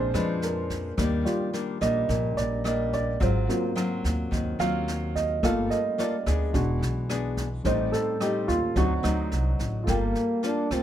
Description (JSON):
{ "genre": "bossa nova", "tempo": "108 BPM", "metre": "4/4", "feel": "straight", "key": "G minor", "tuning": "A4 = 440 Hz", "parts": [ { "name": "nylon-string guitar", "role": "accompaniment", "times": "0.0-10.8 s", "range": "Ab2 to A4", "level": "-30 LUFS", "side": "left 5 dB", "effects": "none" }, { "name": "warm baby grand piano", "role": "accompaniment", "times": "0.0-10.8 s", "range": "Gb3 to G5", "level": "-28 LUFS", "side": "right 3 dB", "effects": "none" }, { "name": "upright bass", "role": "bass", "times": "0.0-10.8 s", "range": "E1 to F2", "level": "-28 LUFS", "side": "equal", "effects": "none" }, { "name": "jazz brush drum kit", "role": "drums", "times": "0.1-10.8 s", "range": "kick drum, rim click, snare drum", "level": "-33 LUFS", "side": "equal", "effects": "none" }, { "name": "breathy trombone", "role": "melody", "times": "9.9-10.8 s", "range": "Bb3 to D4", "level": "-27 LUFS", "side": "right 1 dB", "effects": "none" } ], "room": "little or no reverb", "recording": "close, detailed microphones", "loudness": "-24 LUFS", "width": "side -11 dB against mid", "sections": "0.0-9.9 A section", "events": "grand piano solo 0.0-9.9", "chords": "0.0 Bb7; 1.0 Ebmaj7; 3.2 Ab13; 5.4 Gm9; 6.5 E7; 7.7 Am7b5; 8.8 D7b9; 9.9 Gm9" }